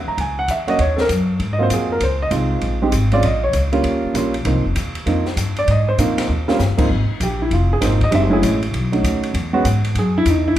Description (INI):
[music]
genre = jazz piano trio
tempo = 196 BPM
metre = 4/4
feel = swing 64% on 8ths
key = Ab major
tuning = A4 = 440 Hz
[part]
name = upright bass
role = bass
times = 0.0-10.6 s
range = F1 to Bb2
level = -19 LUFS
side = equal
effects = none
[part]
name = warm baby grand piano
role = melody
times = 0.1-10.6 s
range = Ab2 to Bb5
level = -19 LUFS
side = right 2 dB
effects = none
[part]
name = open jazz drum kit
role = drums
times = 0.2-10.6 s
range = crash cymbal, hi-hat, kick drum, ride cymbal, snare drum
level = -26 LUFS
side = left 1 dB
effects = none
[sound]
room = moderate recital hall reverb, RT60 1.4 s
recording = recorded in a church or concert hall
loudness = -16 LUFS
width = side -12 dB against mid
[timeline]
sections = 0.0-6.9 A section; 6.9-10.6 B section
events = drum fill 6.3-6.6; grand piano solo 6.9-10.6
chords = 0.0 E6; 0.8 Ebm; 1.4 Ab13; 2.0 Dbmaj9; 3.2 Bbm; 3.8 Eb7; 4.5 Ab69; 6.3 Eb7; 6.9 Ab69; 8.1 Gbm9; 8.7 B9; 9.3 E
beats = 0.17 0.48 | 0.79 1.09 1.40 1.70 | 2.01 2.31 2.62 2.92 | 3.23 3.54 3.84 4.15 | 4.45 4.76 5.07 5.37 | 5.68 5.98 6.29 6.59 | 6.90 7.21 7.51 7.82 | 8.12 8.43 8.73 9.04 | 9.35 9.65 9.96 10.26 | 10.57